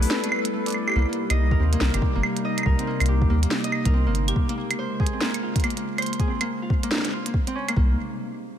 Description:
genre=IDM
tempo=141 BPM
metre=4/4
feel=swing 62% on 16ths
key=C phrygian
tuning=A4 = 440 Hz
part: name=felt-muted upright piano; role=melody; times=0.0-0.5 s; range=none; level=barely audible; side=none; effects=none
part: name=warbly tape-like pad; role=sustained chords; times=0.0-8.0 s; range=C3 to B4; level=-29 LUFS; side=equal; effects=chorus, built-in reverb
part: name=Celtic harp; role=arpeggios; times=0.0-8.0 s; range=A3 to Eb5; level=-29 LUFS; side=equal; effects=low-pass filter, ping-pong delay
part: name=round analog bass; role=bass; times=0.0-4.3, 7.8-8.0 s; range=G1 to Eb2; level=-21 LUFS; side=equal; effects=tube saturation
part: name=glitchy drum kit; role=drums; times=0.0-7.8 s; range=claves, hi-hat, snare drum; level=-28 LUFS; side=right 1 dB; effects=overdrive
part: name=electronic kick drum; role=drums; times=1.5-7.9 s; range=none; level=-23 LUFS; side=equal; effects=overdrive
room=light reverb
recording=none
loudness=-21 LUFS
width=side -10 dB against mid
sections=1.0-7.8 A section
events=break 0.1-1.0; filter sweep on ambient pad 1.0-7.8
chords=0.0 G69; 1.0 Cm7; 4.4 Bbm9; 7.8 Cm7

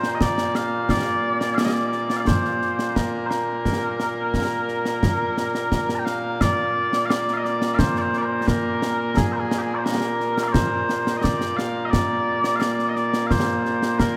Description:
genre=scottish traditional, Scottish pipe music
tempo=87 BPM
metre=4/4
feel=straight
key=Bb major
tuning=A4 = 441 Hz
part: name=mellow small bagpipes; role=melody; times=0.0-14.2 s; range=Bb2 to Bb5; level=-24 LUFS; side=equal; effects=none
part: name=concert snare drum and concert bass drum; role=drums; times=0.0-14.2 s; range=none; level=-27 LUFS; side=equal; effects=none
room=wet cathedral reverb, RT60 4.9 s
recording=in a vast, echoing space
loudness=-22 LUFS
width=mono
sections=0.0-6.4 A section; 6.4-14.2 A section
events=none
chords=none

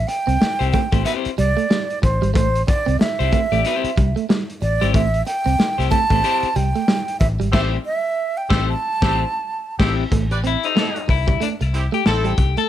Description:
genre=funk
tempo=93 BPM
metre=4/4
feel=swing 60% on 16ths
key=A minor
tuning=A4 = 440 Hz
part: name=breathy jazz flute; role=melody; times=0.0-9.8 s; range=C5 to A5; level=-22 LUFS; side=right 3 dB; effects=plate reverb
part: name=vintage muted fingered electric bass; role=bass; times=0.0-12.5 s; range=G#1 to C2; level=-21 LUFS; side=left 1 dB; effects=none
part: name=electric guitar at the edge of break-up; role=riff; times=0.1-12.7 s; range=G3 to C4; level=-25 LUFS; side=right 9 dB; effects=none
part: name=crunchy breakbeat drum kit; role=drums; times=0.1-12.7 s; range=crash cymbal, hi-hat, kick drum, snare drum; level=-20 LUFS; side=left 1 dB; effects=none
part: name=clean electric guitar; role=accompaniment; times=0.6-12.7 s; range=C4 to D5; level=-23 LUFS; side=left 11 dB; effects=plate reverb
part: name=clear horn section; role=second line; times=7.5-12.3 s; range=C4 to D5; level=-27 LUFS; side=right 2 dB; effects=plate reverb
room=light reverb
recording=none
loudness=-17 LUFS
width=side -12 dB against mid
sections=0.0-10.1 A section; 10.1-12.7 B section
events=band accent 7.5-10.1; clean electric guitar solo 10.1-12.7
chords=0.0 Am7

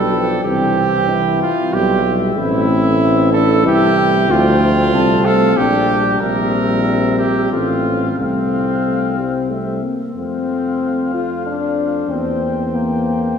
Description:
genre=classical, brass quintet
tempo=93 BPM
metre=3/4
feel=straight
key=F major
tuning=A4 = 439 Hz
part: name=mellow trumpet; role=melody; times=0.0-13.4 s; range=E5 to A5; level=-26 LUFS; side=left 6 dB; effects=none
part: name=clear flugelhorn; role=second line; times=0.0-13.4 s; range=C4 to C5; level=-19 LUFS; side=right 3 dB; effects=none
part: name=clear French horn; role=accompaniment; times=0.0-13.4 s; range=A3 to F4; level=-21 LUFS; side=left 6 dB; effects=none
part: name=mellow euphonium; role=accompaniment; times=0.0-13.4 s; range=E3 to Bb3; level=-23 LUFS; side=right 1 dB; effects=none
part: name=warm tuba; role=bass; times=0.0-13.3 s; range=A1 to F2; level=-19 LUFS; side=right 1 dB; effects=none
room=wet church reverb, RT60 3.3 s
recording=small room reverb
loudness=-14 LUFS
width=side -7 dB against mid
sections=0.0-10.2 A section; 10.2-13.4 B section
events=none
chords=0.5 C; 2.4 Am; 4.3 Dm; 5.6 Gm/Bb; 6.2 C7/Bb; 7.5 F/A; 8.2 F/C; 9.5 C; 10.2 F; 12.1 C7/E

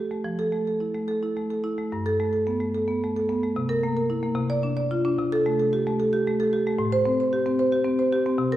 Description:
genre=classical, contemporary piece for solo marimba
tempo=74 BPM (dotted quarters)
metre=6/8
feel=rubato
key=unclear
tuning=A4 = 436 Hz
part: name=marimba with medium mallets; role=solo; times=0.0-8.6 s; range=G2 to D5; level=-22 LUFS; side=equal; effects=none
room=wet recital hall reverb, RT60 1.5 s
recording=heard from further back in the room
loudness=-22 LUFS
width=side -13 dB against mid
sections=0.3-8.6 A section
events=none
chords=0.3 Fmaj7; 1.9 Gadd9; 3.6 C7; 4.4 Dm7/C; 5.2 Am7/C; 6.8 Am7

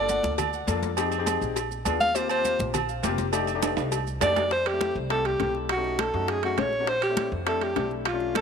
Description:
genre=Afro-Cuban jazz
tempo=203 BPM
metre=4/4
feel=straight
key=unclear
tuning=A4 = 440 Hz
part: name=warm alto saxophone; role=melody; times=0.0-8.4 s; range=F4 to F5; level=-26 LUFS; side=equal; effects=tape echo
part: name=warm baby grand piano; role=accompaniment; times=0.0-8.4 s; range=A3 to A4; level=-31 LUFS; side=left 12 dB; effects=none
part: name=upright bass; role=bass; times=0.0-8.4 s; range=F1 to F#2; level=-33 LUFS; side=right 1 dB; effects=none
part: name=congas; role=percussion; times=0.1-8.4 s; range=none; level=-36 LUFS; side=left 1 dB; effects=none
part: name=cowbell and bongos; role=percussion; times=0.1-8.4 s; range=none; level=-35 LUFS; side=left 14 dB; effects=none
part: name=maracas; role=percussion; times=0.1-4.5 s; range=none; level=-38 LUFS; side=right 18 dB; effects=none
part: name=agogo bells and timbales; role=percussion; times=0.4-8.4 s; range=none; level=-31 LUFS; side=right 15 dB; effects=none
room=moderate plate reverb, RT60 3.6 s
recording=1960s-style stereo with parts hard left and right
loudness=-23 LUFS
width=side -6 dB against mid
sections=0.0-4.5 A section; 4.5-8.4 B section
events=alto saxophone solo 0.0-4.5; drum fill 3.6-4.5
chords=0.0 Gm9; 1.0 Fm9; 1.6 Bb7b9; 2.2 Eb69; 3.3 F13; 4.5 Fmaj9; 5.7 B9; 6.9 Bbmaj9#11

